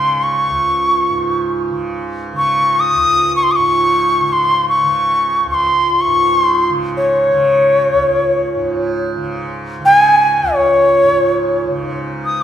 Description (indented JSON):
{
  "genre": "indian classical, Hindustani",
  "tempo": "free time",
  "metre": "none",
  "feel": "none",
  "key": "unclear",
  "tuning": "A4 = 441 Hz",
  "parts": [
    { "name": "bright reedy bansuri", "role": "melody", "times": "0.0-12.4 s", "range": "Db5 to Eb6", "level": "-12 LUFS", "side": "left 1 dB", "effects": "none" },
    { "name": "tanpura", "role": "drone", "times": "0.0-12.4 s", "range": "Db2 to Db3", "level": "-21 LUFS", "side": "right 3 dB", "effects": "none" }
  ],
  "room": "wet recital hall reverb, RT60 1.6 s",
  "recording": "recorded in a church or concert hall",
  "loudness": "-12 LUFS",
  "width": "side -10 dB against mid",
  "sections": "0.0-11.8 A section",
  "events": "none",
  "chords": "none",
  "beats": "free time"
}